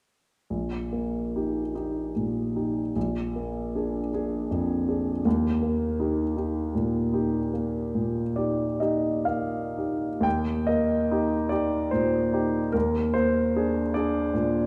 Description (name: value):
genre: classical, romantic nocturne for solo piano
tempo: 39-54 BPM (dotted quarters)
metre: 12/8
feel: rubato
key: Eb major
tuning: A4 = 441 Hz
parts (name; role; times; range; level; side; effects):
- clear concert grand piano; solo; 0.5-14.7 s; Bb1 to G5; -26 LUFS; equal; none
room: wet recital hall reverb, RT60 1.6 s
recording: none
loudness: -27 LUFS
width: mono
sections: 0.5-10.3 A section; 10.3-14.7 B section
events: none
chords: 0.5 Eb/Bb; 3.0 Bb7; 5.3 Eb; 12.7 Bb7/Eb